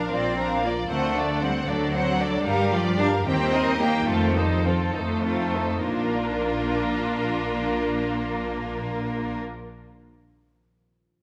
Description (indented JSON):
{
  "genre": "cinematic, playful, whimsical film cue",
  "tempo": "64-77 BPM (dotted quarters)",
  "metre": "6/8",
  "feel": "straight",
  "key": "Bb major",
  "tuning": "A4 = 441 Hz",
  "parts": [
    { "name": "warm studio violin section", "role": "melody", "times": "0.0-9.4 s", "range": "A4 to G5", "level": "-33 LUFS", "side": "equal", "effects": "none" },
    { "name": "rich studio violin section", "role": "second line", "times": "0.0-9.4 s", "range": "F4 to D5", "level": "-33 LUFS", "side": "equal", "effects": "none" },
    { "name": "rich studio viola section", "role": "accompaniment", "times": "0.0-9.4 s", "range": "Bb3 to G4", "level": "-32 LUFS", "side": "equal", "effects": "none" },
    { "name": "concert harp", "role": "arpeggios", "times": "0.0-9.8 s", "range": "G2 to D5", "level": "-34 LUFS", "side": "equal", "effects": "none" },
    { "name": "clear studio cello section", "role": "bass", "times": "0.0-9.4 s", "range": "F3 to D4", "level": "-29 LUFS", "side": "equal", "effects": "none" },
    { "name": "rich studio double bass section", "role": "bass", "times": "0.0-9.4 s", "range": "Bb1 to G2", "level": "-33 LUFS", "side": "equal", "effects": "none" }
  ],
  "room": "moderate scoring stage reverb, RT60 1.6 s",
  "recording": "none",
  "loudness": "-24 LUFS",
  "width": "mono",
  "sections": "0.0-5.9 A section; 5.9-9.6 B section",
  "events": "slowing down 1.7-5.9",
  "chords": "0.0 Bb; 0.9 D7; 2.5 Gm7; 3.3 Eb; 4.1 F7; 5.9 Bb",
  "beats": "0.12 | 0.90 1.68 | 2.46 3.26 | 4.08 4.95 | 5.87 6.81 | 7.73 8.66"
}